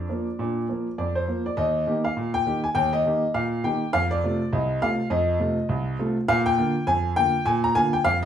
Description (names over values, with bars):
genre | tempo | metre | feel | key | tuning
ragtime piano | 102 BPM | 2/4 | swing 59% on 16ths | Eb major | A4 = 440 Hz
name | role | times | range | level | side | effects
warm grand piano | solo | 0.0-8.3 s | C2 to Bb5 | -21 LUFS | equal | none
room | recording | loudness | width
wet studio reverb, RT60 0.5 s | heard from further back in the room | -21 LUFS | side -9 dB against mid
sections
0.0-1.6 A section; 1.6-8.3 B section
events
none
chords
0.0 Bb; 1.6 Eb; 3.9 F7; 6.3 Bb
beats
| 0.41 1.00 | 1.59 2.18 | 2.77 3.35 | 3.94 4.53 | 5.12 5.70 | 6.29 6.88 | 7.46 8.05